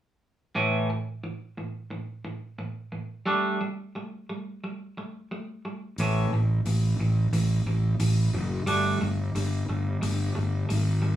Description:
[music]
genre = quiet-loud alternative rock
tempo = 89 BPM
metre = 4/4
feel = straight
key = unclear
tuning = A4 = 440 Hz
[part]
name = twangy electric guitar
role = arpeggios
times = 0.5-11.2 s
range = A2 to D4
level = -30 LUFS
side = right 1 dB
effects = warbly pitch drift
[part]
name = fuzz fingered electric bass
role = bass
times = 6.0-11.2 s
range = F#1 to A1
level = -24 LUFS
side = equal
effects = overdrive
[part]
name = hi-hat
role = drums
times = 6.0-10.9 s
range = none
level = -40 LUFS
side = left 2 dB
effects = none
[sound]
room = moderate studio reverb, RT60 0.5 s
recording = band playing live in one room, studio ambience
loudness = -24 LUFS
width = side -12 dB against mid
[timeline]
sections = 0.6-11.2 A section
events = none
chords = 0.6 A5; 3.3 Gsus2; 6.0 A5; 8.7 Gsus2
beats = | 0.56 1.24 1.92 2.59 | 3.27 3.95 4.62 5.30 | 5.98 6.65 7.33 8.00 | 8.68 9.35 10.03 10.70

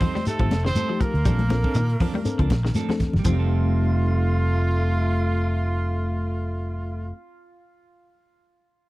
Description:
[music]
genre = afrobeat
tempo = 120 BPM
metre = 4/4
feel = swing 55% on 16ths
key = F mixolydian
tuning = A4 = 439 Hz
[part]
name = clear trumpet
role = melody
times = 0.0-7.1 s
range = F4 to C5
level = -32 LUFS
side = right 2 dB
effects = tape echo
[part]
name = edgy tenor saxophone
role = second line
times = 0.0-7.1 s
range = A3 to F4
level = -36 LUFS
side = right 2 dB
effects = none
[part]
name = clean electric guitar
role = arpeggios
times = 0.0-3.4 s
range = Eb3 to G3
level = -32 LUFS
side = left 4 dB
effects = none
[part]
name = clean electric guitar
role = stabs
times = 0.0-7.3 s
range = F3 to A4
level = -33 LUFS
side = right 7 dB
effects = spring reverb
[part]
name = tight funk drum kit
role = drums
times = 0.0-3.4 s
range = crash cymbal, hi-hat, kick drum, snare drum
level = -25 LUFS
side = equal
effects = none
[part]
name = congas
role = percussion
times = 0.0-3.4 s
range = none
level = -27 LUFS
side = left 2 dB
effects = none
[part]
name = shekere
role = percussion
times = 0.0-3.4 s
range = none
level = -28 LUFS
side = right 1 dB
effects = none
[part]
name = mellow reed electric piano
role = accompaniment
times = 0.3-7.1 s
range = A3 to A4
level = -33 LUFS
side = left 4 dB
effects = fast tremolo
[part]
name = fingered electric bass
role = bass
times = 0.4-7.1 s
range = F1 to Bb2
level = -22 LUFS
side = equal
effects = none
[part]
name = mellow trombone section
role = second line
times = 3.3-7.1 s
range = A3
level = -31 LUFS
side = left 3 dB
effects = none
[sound]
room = little or no reverb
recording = dry, close 1970s-style studio recording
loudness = -20 LUFS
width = side -18 dB against mid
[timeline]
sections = 0.0-3.3 A section; 3.3-7.2 B section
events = drum fill 2.9-3.3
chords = 0.0 F9; 1.3 Bbmaj9; 3.3 F9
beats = 0.26 0.76 | 1.26 1.76 2.25 2.75 | 3.25 3.75 4.25 4.75 | 5.25 5.75 6.25 6.75

